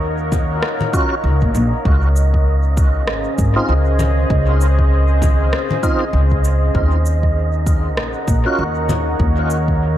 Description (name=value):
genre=ambient dub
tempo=98 BPM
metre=4/4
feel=swing 58% on 16ths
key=Eb dorian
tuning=A4 = 440 Hz
part: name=deep dark ambient pad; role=sustained chords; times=0.0-10.0 s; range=Db4 to Gb5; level=-23 LUFS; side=left 2 dB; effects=chorus, built-in reverb
part: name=upright bass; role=bass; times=0.0-10.0 s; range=Ab1 to Eb2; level=-16 LUFS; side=equal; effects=none
part: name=wind-like tuned noise texture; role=texture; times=0.0-10.0 s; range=Eb5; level=-27 LUFS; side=right 6 dB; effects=built-in reverb
part: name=electronic congas, shaker and rim click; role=drums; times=0.3-9.6 s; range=none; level=-25 LUFS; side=left 2 dB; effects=dub echo
part: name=electronic kick drum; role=drums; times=0.3-9.8 s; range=none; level=-19 LUFS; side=equal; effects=none
part: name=tonewheel organ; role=stabs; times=0.9-8.6 s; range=C4 to Gb4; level=-24 LUFS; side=right 1 dB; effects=overdrive, chorus vibrato, slow rotary speaker, dub echo
room=digital ambience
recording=faint mains hum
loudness=-14 LUFS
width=side -12 dB against mid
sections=0.0-10.0 A section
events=none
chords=0.0 Ebm9; 1.9 Dbmaj9; 6.8 Ebm9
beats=0.02 0.63 1.24 | 1.85 2.46 3.08 3.69 | 4.30 4.91 5.53 6.14 | 6.75 7.36 7.97 8.59 | 9.20 9.81